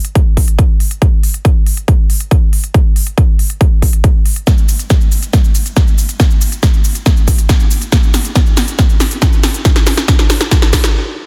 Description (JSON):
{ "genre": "uplifting trance", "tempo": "139 BPM", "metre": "4/4", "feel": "straight", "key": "none", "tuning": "none", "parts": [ { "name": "big-room dance drum kit", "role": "drums", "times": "0.0-10.9 s", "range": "hi-hat, shaker, snare drum", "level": "-20 LUFS", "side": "equal", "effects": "overdrive" }, { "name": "electronic kick drum", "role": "drums", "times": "0.2-10.8 s", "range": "none", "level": "-12 LUFS", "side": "equal", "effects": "overdrive" } ], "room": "light reverb, digital ambience", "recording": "dense, heavily limited modern master", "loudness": "-12 LUFS", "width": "mono", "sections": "0.0-11.3 A section", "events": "build-up 0.0-11.3; drum fill 4.5-10.9; stop 10.9-11.3", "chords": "none" }